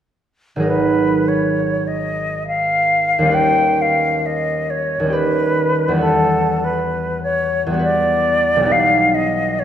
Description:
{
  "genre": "classical, impressionist duo for flute and harp",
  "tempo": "67 BPM",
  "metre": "3/4",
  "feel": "rubato",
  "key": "unclear",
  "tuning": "A4 = 440 Hz",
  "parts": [
    { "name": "concert harp", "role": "accompaniment", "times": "0.6-9.6 s", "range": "G#1 to B4", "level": "-19 LUFS", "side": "right 1 dB", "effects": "none" },
    { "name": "silver concert flute", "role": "melody", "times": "0.7-9.6 s", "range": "A4 to G5", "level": "-17 LUFS", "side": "left 1 dB", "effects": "none" }
  ],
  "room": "wet scoring stage reverb, RT60 1.6 s",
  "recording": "none",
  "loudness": "-15 LUFS",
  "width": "side -9 dB against mid",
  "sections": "0.7-9.6 A section",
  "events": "none",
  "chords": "0.7 G#sus2; 3.4 D#aug7; 6.0 Em9; 8.7 Baug"
}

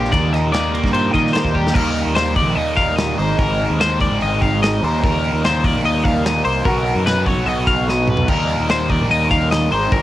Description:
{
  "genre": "math rock and midwest emo",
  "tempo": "147 BPM",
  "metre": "4/4",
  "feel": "straight",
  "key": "Eb major",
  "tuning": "A4 = 440 Hz",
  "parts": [
    { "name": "twelve-string electric guitar", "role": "accompaniment", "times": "0.0-3.4 s", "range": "Eb2 to G4", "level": "-23 LUFS", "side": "right 4 dB", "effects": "cassette tape" },
    { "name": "twelve-string electric guitar", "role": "arpeggios", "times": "0.0-10.0 s", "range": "G4 to F5", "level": "-20 LUFS", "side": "left 4 dB", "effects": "cassette tape" },
    { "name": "biting overdriven guitar", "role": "riff", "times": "0.0-10.0 s", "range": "Eb2 to F#4", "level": "-20 LUFS", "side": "right 2 dB", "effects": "phaser, cassette tape" },
    { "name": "growling fingered electric bass", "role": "bass", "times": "0.0-10.0 s", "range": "Ab1 to Eb3", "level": "-21 LUFS", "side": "equal", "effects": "overdrive" },
    { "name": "modern studio drum kit", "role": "drums", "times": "0.0-10.0 s", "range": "crash cymbal, hi-hat, kick drum, ride cymbal, snare drum, toms", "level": "-22 LUFS", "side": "equal", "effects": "cassette tape" }
  ],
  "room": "little or no reverb",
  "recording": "home recording on cassette",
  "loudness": "-15 LUFS",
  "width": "side -14 dB against mid",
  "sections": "0.0-1.8 A section; 1.8-10.0 B section",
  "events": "drum fill 1.6, 7.9-8.3",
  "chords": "0.1 Ebmaj7; 3.2 Ab6; 4.8 Eb; 6.7 Bmaj7; 8.3 Ebmaj7"
}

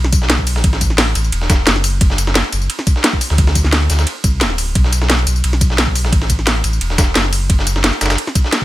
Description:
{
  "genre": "liquid drum and bass",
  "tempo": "175 BPM",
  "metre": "4/4",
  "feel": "straight",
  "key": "unclear",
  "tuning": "A4 = 440 Hz",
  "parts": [
    { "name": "sub bass with octave", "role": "bass", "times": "0.0-8.2 s", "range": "D1 to D2", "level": "-16 LUFS", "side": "equal", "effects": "none" },
    { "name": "garage drum kit", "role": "drums", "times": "0.0-8.6 s", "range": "hi-hat, ride cymbal, snare drum, tambourine", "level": "-18 LUFS", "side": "equal", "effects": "none" },
    { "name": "dusty soul sampler-style drum kit", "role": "drums", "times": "0.1-8.6 s", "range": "hi-hat, ride cymbal, snare drum", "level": "-21 LUFS", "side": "equal", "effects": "overdrive, high-pass filter on snare, high-pass filter on cymbals, high-pass filter on hats, high-pass filter on room" },
    { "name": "electronic kick drum", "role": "drums", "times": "0.1-8.6 s", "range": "none", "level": "-14 LUFS", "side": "equal", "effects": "none" }
  ],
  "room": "little or no reverb",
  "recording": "none",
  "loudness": "-12 LUFS",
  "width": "side -16 dB against mid",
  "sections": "0.0-8.6 A section",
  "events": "none",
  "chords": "none"
}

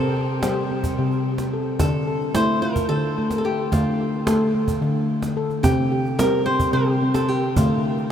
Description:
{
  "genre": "world meditative, meditative tuned percussion",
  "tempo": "218 BPM (eighths)",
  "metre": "7/8",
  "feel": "straight",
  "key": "D minor",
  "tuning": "A4 = 440 Hz",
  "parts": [
    { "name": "flamenco guitar", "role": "melody", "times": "0.0-8.1 s", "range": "F4 to C5", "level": "-25 LUFS", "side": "equal", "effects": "tape echo" },
    { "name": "handpan", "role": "arpeggios", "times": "0.0-8.1 s", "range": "C3 to C5", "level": "-21 LUFS", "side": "equal", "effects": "none" },
    { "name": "cajon", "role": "percussion", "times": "0.4-8.0 s", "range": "none", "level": "-27 LUFS", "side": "right 1 dB", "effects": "none" }
  ],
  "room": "wet huge ambient reverb, RT60 7.7 s",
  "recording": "in a vast, echoing space",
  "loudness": "-19 LUFS",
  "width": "side -9 dB against mid",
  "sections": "0.0-8.1 A section",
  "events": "none",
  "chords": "0.0 C5; 1.8 Dm; 5.6 C5; 7.6 Dm"
}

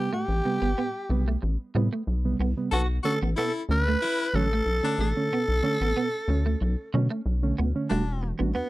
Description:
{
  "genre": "funk",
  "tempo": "92 BPM",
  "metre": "4/4",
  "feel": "straight",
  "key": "unclear",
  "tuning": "A4 = 441 Hz",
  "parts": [
    { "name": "growling tenor saxophone", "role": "melody", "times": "0.0-8.7 s", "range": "B3 to B4", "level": "-28 LUFS", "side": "equal", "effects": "slapback echo" },
    { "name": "reed electric piano", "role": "stabs", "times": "0.0-8.6 s", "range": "A2 to F#4", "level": "-31 LUFS", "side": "right 3 dB", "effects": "overdrive, spring reverb" },
    { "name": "electric guitar at the edge of break-up", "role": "riff", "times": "0.1-8.7 s", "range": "F#3 to B3", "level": "-30 LUFS", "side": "right 4 dB", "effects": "ensemble chorus" },
    { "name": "rubbery square bass", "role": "bass", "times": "0.3-8.6 s", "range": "E1 to B2", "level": "-25 LUFS", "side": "equal", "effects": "none" },
    { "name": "bright baritone saxophone", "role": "second line", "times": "2.7-8.3 s", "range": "D4 to A4", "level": "-31 LUFS", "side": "left 5 dB", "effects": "none" }
  ],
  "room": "little or no reverb",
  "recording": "dry, close 1970s-style studio recording",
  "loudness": "-24 LUFS",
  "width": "side -18 dB against mid",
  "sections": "0.0-7.9 A section",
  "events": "none",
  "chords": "0.0 Am9; 2.7 Bm7; 7.9 Em11"
}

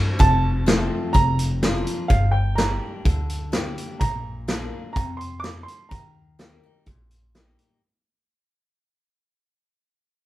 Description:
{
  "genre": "honky-tonk and classic country",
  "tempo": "126 BPM",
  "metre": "4/4",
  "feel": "straight",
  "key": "Bb major",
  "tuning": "A4 = 438 Hz",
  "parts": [
    { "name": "picked steel-string acoustic guitar", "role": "accompaniment", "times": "0.0-7.8 s", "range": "F2 to G4", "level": "-27 LUFS", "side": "left 2 dB", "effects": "none" },
    { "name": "dark upright piano", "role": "melody", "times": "0.2-7.3 s", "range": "F5 to D6", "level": "-26 LUFS", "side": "right 3 dB", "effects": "none" },
    { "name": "upright bass", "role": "bass", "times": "0.2-7.5 s", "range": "F1 to F2", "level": "-25 LUFS", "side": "equal", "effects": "none" },
    { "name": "vintage drum kit", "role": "drums", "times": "0.2-7.7 s", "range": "hi-hat, kick drum, snare drum", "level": "-22 LUFS", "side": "equal", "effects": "none" }
  ],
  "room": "moderate studio ambience, RT60 0.5 s",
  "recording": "band playing live in one room",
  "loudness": "-20 LUFS",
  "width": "side -16 dB against mid",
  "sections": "0.2-7.8 A section",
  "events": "fade-out 0.2-7.8",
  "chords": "0.2 F; 1.1 Bb/F; 2.1 Gm; 4.0 Bb; 5.9 Eb"
}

